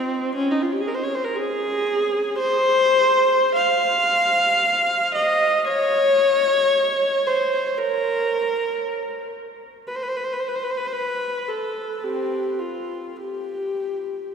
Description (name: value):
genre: classical, free, expressive piece for unaccompanied viola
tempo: 46-59 BPM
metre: 4/4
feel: rubato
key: unclear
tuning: A4 = 440 Hz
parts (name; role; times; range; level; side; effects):
- warm viola; solo; 0.0-14.3 s; C4 to F5; -19 LUFS; equal; none
room: wet cathedral reverb, RT60 4.7 s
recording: recorded in a church or concert hall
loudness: -19 LUFS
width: side -6 dB against mid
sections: 0.0-14.3 A section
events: none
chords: none